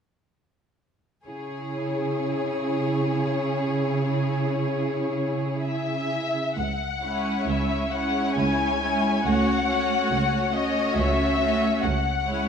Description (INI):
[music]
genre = classical, slow romantic movement for string orchestra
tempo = 69 BPM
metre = 3/4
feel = rubato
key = C# minor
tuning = A4 = 439 Hz
[part]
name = warm symphonic violin section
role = melody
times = 1.3-12.5 s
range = C#5 to G#5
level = -27 LUFS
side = left 5 dB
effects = none
[part]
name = clear symphonic violin section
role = second line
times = 1.3-12.5 s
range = E4 to C#5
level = -30 LUFS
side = left 1 dB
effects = none
[part]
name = rich symphonic viola section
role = accompaniment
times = 1.3-12.5 s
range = G#3 to E4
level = -28 LUFS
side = right 2 dB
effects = none
[part]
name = warm symphonic cello section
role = bass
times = 1.3-12.5 s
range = C#2 to C#3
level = -28 LUFS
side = right 3 dB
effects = none
[sound]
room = wet concert hall reverb, RT60 1.8 s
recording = dark, warm production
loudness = -22 LUFS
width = side -7 dB against mid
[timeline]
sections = 1.3-6.6 A section; 6.6-12.5 B section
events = none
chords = 1.3 C#m; 9.3 F#m/C#; 11.8 C#m